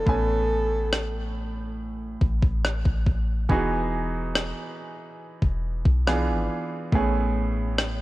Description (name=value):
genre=contemporary R&B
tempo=70 BPM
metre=4/4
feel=straight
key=unclear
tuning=A4 = 443 Hz
part: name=breathy alto saxophone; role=melody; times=0.0-1.3 s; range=A4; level=-27 LUFS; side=equal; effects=none
part: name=clear baby grand piano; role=accompaniment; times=0.0-8.0 s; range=A2 to G#5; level=-29 LUFS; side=right 2 dB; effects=none
part: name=soft 808-style bass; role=bass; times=0.0-8.0 s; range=E1 to B1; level=-26 LUFS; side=equal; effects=none
part: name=crisp 8-bit digital drum machine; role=drums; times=0.1-8.0 s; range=kick drum, rim click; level=-25 LUFS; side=equal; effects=none
room=light reverb, small room ambience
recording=worn, warbling old tape, cassette tape, warbly pitch drift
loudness=-22 LUFS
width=side -17 dB against mid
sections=0.0-8.0 A section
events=none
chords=0.1 Amaj9; 3.5 Emaj7; 6.1 E7b9; 6.9 Amaj9